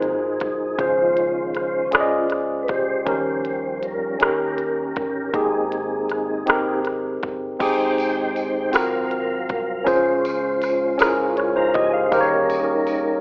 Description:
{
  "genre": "slow gospel",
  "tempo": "53 BPM (dotted quarters)",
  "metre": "6/8",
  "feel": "straight",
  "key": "Ab major",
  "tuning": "A4 = 440 Hz",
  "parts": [
    { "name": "tine electric piano", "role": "accompaniment", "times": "0.0-13.2 s", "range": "Ab2 to F5", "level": "-21 LUFS", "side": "equal", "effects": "medium stereo tremolo" },
    { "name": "tonewheel organ", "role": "sustained chords", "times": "0.0-13.2 s", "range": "Eb3 to Bb5", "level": "-24 LUFS", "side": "equal", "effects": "slow rotary speaker, chorus vibrato" },
    { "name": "fingered electric bass", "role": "bass", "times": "0.0-13.2 s", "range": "G1 to Eb2", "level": "-44 LUFS", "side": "equal", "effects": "none" },
    { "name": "glitchy drum kit", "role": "drums", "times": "0.0-13.0 s", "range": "crash cymbal, hi-hat, kick drum, rim click", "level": "-24 LUFS", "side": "equal", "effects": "none" },
    { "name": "tambourine", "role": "percussion", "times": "7.6-13.2 s", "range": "none", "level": "-42 LUFS", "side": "right 1 dB", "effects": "none" }
  ],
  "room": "moderate concert hall reverb, RT60 2.2 s",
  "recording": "telephone sound",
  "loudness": "-18 LUFS",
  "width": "side -29 dB against mid",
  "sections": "0.0-7.6 A section; 7.6-13.2 A section",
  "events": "tonewheel organ solo 0.0-7.6",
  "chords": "0.0 Ab13; 0.8 Dbmaj7; 3.1 Eb7; 5.3 Abmaj7; 8.7 Ab13; 9.9 Dbmaj7; 12.1 Eb7"
}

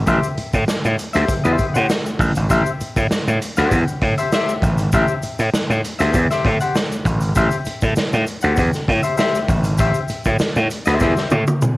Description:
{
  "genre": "funk",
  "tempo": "99 BPM",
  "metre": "4/4",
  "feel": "straight",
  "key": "A dorian",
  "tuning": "A4 = 441 Hz",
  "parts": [
    { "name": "gritty slap bass", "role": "bass", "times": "0.0-11.4 s", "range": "G#1 to A2", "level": "-17 LUFS", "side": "equal", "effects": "overdrive" },
    { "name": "clean electric guitar", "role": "accompaniment", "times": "0.1-11.2 s", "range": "G4 to F#5", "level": "-22 LUFS", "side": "left 4 dB", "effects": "spring reverb, cassette tape" },
    { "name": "raw garage drum kit", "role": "drums", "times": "0.1-11.8 s", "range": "hi-hat, kick drum, snare drum, toms", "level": "-20 LUFS", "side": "equal", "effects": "none" },
    { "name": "egg shaker", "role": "percussion", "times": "0.1-11.8 s", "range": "none", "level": "-36 LUFS", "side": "left 2 dB", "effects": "none" }
  ],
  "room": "little or no reverb",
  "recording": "home recording on cassette",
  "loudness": "-16 LUFS",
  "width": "side -19 dB against mid",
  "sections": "0.0-11.8 A section",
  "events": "drum fill 11.0-11.8",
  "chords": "0.0 Am7"
}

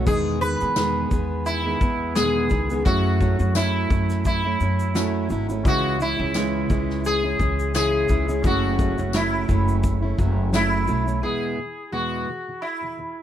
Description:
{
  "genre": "acoustic pop",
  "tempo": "86 BPM",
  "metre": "4/4",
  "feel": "swing 55% on 16ths",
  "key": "E major",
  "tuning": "A4 = 438 Hz",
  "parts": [
    { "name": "felt-muted upright piano", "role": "accompaniment", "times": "0.0-11.3 s", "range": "E3 to F#5", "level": "-37 LUFS", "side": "left 4 dB", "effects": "none" },
    { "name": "fingerpicked plugged-in steel-string acoustic guitar", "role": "accompaniment", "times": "0.0-13.2 s", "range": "E2 to G#4", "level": "-26 LUFS", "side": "right 3 dB", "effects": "none" },
    { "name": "upright bass", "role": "bass", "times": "0.0-11.2 s", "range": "F#1 to F#2", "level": "-24 LUFS", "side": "equal", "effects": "none" },
    { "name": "sitar", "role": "melody", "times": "0.1-13.2 s", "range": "E4 to B4", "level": "-25 LUFS", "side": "left 1 dB", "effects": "none" },
    { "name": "vintage brush drum kit", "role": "drums", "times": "0.1-11.2 s", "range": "kick drum, shaker, snare drum", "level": "-25 LUFS", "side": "left 1 dB", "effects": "none" },
    { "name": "tambourine", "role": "percussion", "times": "0.8-10.7 s", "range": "none", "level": "-34 LUFS", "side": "left 8 dB", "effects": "none" }
  ],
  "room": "light reverb",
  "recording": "none",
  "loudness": "-20 LUFS",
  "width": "side -10 dB against mid",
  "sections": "0.0-11.2 A section; 11.2-13.2 B section",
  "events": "none",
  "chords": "0.1 Emaj7; 2.9 F#m7; 5.7 C#m; 8.4 F#m7; 11.2 E"
}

